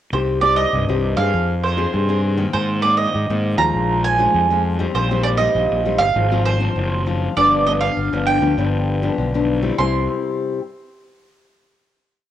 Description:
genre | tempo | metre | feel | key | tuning
samba and choro | 99 BPM | 4/4 | straight | C minor | A4 = 441 Hz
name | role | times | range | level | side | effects
mandolin | melody | 0.1-10.1 s | C5 to C6 | -19 LUFS | right 5 dB | cassette tape
nylon-string guitar | accompaniment | 0.1-10.6 s | F2 to Ab4 | -22 LUFS | left 6 dB | cassette tape
fuzz fingered electric bass | bass | 0.1-10.1 s | F#1 to Ab2 | -21 LUFS | equal | overdrive
room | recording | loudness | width
moderate spring reverb, RT60 1.9 s, small room ambience | home recording on cassette | -16 LUFS | side -11 dB against mid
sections
0.1-9.8 groove; 9.8-12.2 final chord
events
none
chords
0.1 Cm; 1.3 Fm7; 2.5 Abadd9; 3.7 Bb7sus4; 5.0 Eb6/Bb; 6.2 Ab6; 7.4 G7; 9.8 C

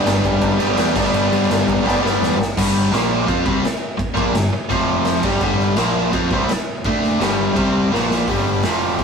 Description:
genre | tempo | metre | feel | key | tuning
garage rock duo or trio | 168 BPM | 4/4 | straight | unclear | A4 = 441 Hz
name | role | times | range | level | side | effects
biting overdriven guitar | riff | 0.0-9.0 s | F2 to F4 | -17 LUFS | equal | none
growling picked electric bass | bass | 0.1-9.0 s | F1 to G2 | -25 LUFS | equal | overdrive, tube saturation
raw garage drum kit | drums | 0.1-9.0 s | crash cymbal, hi-hat, kick drum, snare drum | -23 LUFS | equal | none
room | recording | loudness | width
moderate stone room reverb, RT60 0.9 s | rough rehearsal-room recording | -16 LUFS | side -6 dB against mid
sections
0.0-2.6 A section; 2.6-8.3 B section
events
drum fill 1.9-2.6, 7.9-8.3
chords
0.0 G; 2.6 G5; 2.9 Bb5; 3.3 G5; 4.7 F5; 5.2 G5; 5.8 Bb5; 6.1 Csus4; 6.8 D5; 7.2 G5; 7.6 C5; 7.9 Bb5; 8.3 G5

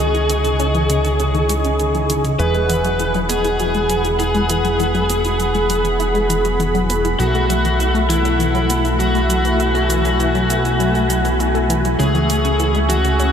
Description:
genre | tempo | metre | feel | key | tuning
synthwave | 100 BPM | 4/4 | straight | E major | A4 = 442 Hz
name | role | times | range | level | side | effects
biting lead guitar | melody | 0.0-13.3 s | E4 to B4 | -20 LUFS | equal | overdrive, diffuse ambient delay
warm analog pad | sustained chords | 0.0-13.3 s | A3 to C#6 | -22 LUFS | equal | chorus
analog pluck | arpeggios | 0.0-13.3 s | C#3 to E4 | -23 LUFS | left 2 dB | chorus, ping-pong delay
chorused polysynth | stabs | 0.0-13.3 s | B2 to A4 | -26 LUFS | right 3 dB | ping-pong delay
fat analog bass | bass | 0.0-13.3 s | E1 to C#2 | -20 LUFS | equal | none
electronic hi-hat and shaker | drums | 0.0-13.3 s | none | -28 LUFS | right 3 dB | none
room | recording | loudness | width
wet huge ambient reverb, RT60 8.4 s | dreamy mix soaked in reverb | -15 LUFS | side -8 dB against mid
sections
0.0-13.3 A section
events
filter sweep on synth arpeggio sound 0.0-13.3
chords
0.0 C#madd9; 2.4 Eadd9; 7.2 B7sus4; 12.0 Amaj7/C#

